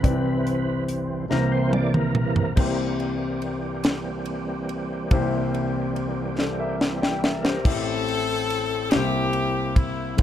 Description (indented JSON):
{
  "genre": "slow gospel",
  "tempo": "47 BPM (dotted quarters)",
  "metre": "6/8",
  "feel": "straight",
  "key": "C major",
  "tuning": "A4 = 440 Hz",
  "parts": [
    { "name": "warm concert grand piano", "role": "accompaniment", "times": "0.0-10.2 s", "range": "A1 to G5", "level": "-26 LUFS", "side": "left 3 dB", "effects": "none" },
    { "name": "overdriven tonewheel organ", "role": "sustained chords", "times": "0.0-7.8 s", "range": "C3 to D5", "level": "-27 LUFS", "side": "right 3 dB", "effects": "fast rotary speaker, chorus vibrato" },
    { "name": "tight funk drum kit", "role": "drums", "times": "0.0-10.2 s", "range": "crash cymbal, hi-hat, kick drum, ride cymbal, snare drum, toms", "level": "-23 LUFS", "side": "equal", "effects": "none" },
    { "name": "clear horn section", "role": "melody", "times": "7.7-10.2 s", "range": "Bb3 to A4", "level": "-25 LUFS", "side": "left 3 dB", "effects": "none" }
  ],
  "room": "light reverb",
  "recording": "dark, warm production",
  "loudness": "-22 LUFS",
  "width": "side -10 dB against mid",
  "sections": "0.0-2.6 A section; 2.6-7.7 B section; 7.7-10.2 C section",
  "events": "tonewheel organ solo 0.0-2.6; drum fill 1.3-2.6, 6.4-7.7",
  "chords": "0.0 Cmaj9; 1.3 C7; 7.7 Am7; 8.9 C7"
}